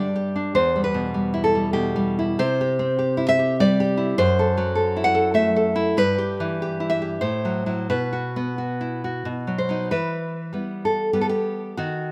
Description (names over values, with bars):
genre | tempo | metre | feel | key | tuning
romantic piece for solo classical guitar | 86-103 BPM | 3/4 | rubato | E minor | A4 = 440 Hz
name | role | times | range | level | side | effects
nylon-string guitar | solo | 0.0-12.1 s | E2 to F#5 | -22 LUFS | equal | none
room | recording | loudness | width
light reverb, studio reverb | rough home demo mix | -22 LUFS | mono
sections
0.0-9.9 A section; 9.9-12.1 B section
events
none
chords
0.0 G5; 0.6 Em; 2.4 C; 4.2 F#m7b5; 6.0 Em/G; 7.2 F#m7b5/A; 7.9 Bsus4; 9.3 B; 9.9 Em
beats
| 0.56 1.15 1.75 | 2.39 2.98 3.58 | 4.17 4.77 5.37 | 5.99 6.60 7.23 | 7.90 8.59 9.28 | 9.93 10.54 11.16 | 11.78